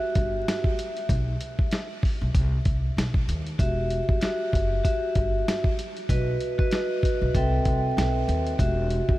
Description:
hip hop, boom-bap hip-hop; 96 BPM; 4/4; swing 58% on 16ths; E harmonic minor; A4 = 440 Hz
vibraphone with medium hard mallets; accompaniment; 0.0-9.2 s; C4 to G5; -28 LUFS; equal; cassette tape, high-pass filter, low-pass filter
upright bass; bass; 0.2-9.2 s; E1 to D#2; -26 LUFS; equal
dusty soul sampler-style drum kit; drums; 0.2-9.2 s; hi-hat, kick drum, snare drum; -26 LUFS; equal; vintage 12-bit sampler grit
light reverb, studio reverb; vinyl crackle; -22 LUFS; side -16 dB against mid
0.0-9.2 A section
0.0 Emadd9; 1.1 N.C.; 2.3 B; 3.6 Emadd9; 6.1 B; 7.3 Am7/C; 8.6 Emadd9
0.47 | 1.09 1.72 2.34 2.97 | 3.59 4.22 4.84 5.47 | 6.09 6.72 7.34 7.97 | 8.59

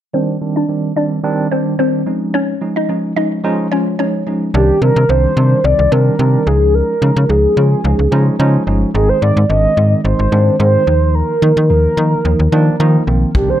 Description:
dance-pop; 109 BPM; 4/4; straight; A4 = 440 Hz
mallet-like synth pluck; melody; 0.1-4.4 s; C4 to Eb5; -18 LUFS; left 2 dB; chorus, phaser, low-pass filter, digital delay
tine electric piano; accompaniment; 0.1-13.6 s; Eb3 to F4; -17 LUFS; right 2 dB; medium tremolo, sidechain pumping, low-pass filter
mellow horn-like synth lead; melody; 4.5-13.6 s; G4 to Eb5; -15 LUFS; equal; chorus, digital delay
slap-like FM bass; bass; 4.5-13.5 s; G1 to Eb3; -13 LUFS; left 1 dB; sidechain pumping
kick drum; drums; 13.3-13.5 s; -15 LUFS; left 1 dB
light reverb, small room ambience; -11 LUFS; side -11 dB against mid
0.1-4.5 A section; 4.5-13.6 B section
filter sweep 0.1-4.5
0.1 Cmadd9; 2.1 Dbadd9; 4.5 Cmadd9; 6.5 Dbadd9; 8.9 Ab; 10.9 Ebsus2
| 0.14 0.69 1.24 1.79 | 2.34 2.89 3.44 3.99 | 4.54 5.09 5.64 6.19 | 6.74 7.29 7.84 8.39 | 8.95 9.49 10.05 10.60 | 11.15 11.70 12.25 12.80 | 13.35

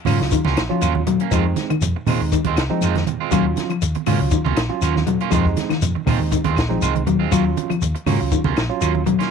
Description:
afrobeat; 120 BPM; 4/4; straight; Eb dorian; A4 = 440 Hz
barky tine electric piano; accompaniment; 0.1-9.0 s; Gb3 to F4; -26 LUFS; right 13 dB; auto-pan
electric guitar at the edge of break-up; arpeggios; 0.1-9.2 s; C3 to Gb3; -22 LUFS; left 11 dB
electric guitar at the edge of break-up; stabs; 0.1-9.3 s; Eb3 to F4; -26 LUFS; right 14 dB
hollow-body short-scale fingered electric bass; bass; 0.1-9.0 s; Bb1 to Bb2; -22 LUFS; equal
compact cocktail drum kit; drums; 0.1-9.3 s; hi-hat, kick drum, snare drum; -25 LUFS; left 1 dB
claves; percussion; 0.1-9.0 s; -33 LUFS; left 19 dB
congas; percussion; 0.1-9.2 s; -25 LUFS; right 11 dB
shekere; percussion; 0.1-9.2 s; -27 LUFS; left 6 dB
light reverb; 1960s-style stereo with parts hard left and right; -17 LUFS; side -6 dB against mid
0.0-9.3 A section
0.0 Ebm9; 1.3 Fm7; 3.3 Ebm9; 5.3 Fm7; 7.3 Ebm9
0.32 0.82 | 1.32 1.82 2.32 2.82 | 3.32 3.82 4.32 4.82 | 5.32 5.82 6.32 6.82 | 7.32 7.82 8.32 8.82

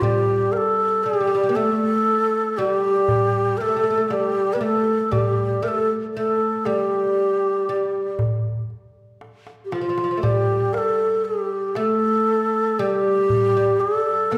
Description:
Arabic maqam ensemble; 118 BPM (eighths); 10/8; straight; A4 = 440 Hz
breathy mellow low ney; melody; 0.0-14.4 s; F4 to B4-48c; -22 LUFS; equal
oud; second line; 0.0-14.4 s; F3 to Bb3+50c; -28 LUFS; equal
darbuka; percussion; 0.0-14.4 s; -27 LUFS; equal
wet recital hall reverb, RT60 1.6 s; recorded in a church or concert hall; -21 LUFS; mono
0.0-14.4 A section
drum fill 9.2-10.2
| 0.02 0.53 1.04 1.55 2.06 2.57 3.08 3.59 4.10 4.61 | 5.12 5.63 6.14 6.65 7.17 7.68 8.19 8.70 9.21 9.72 | 10.23 10.74 11.25 11.76 12.27 12.78 13.29 13.80 14.32

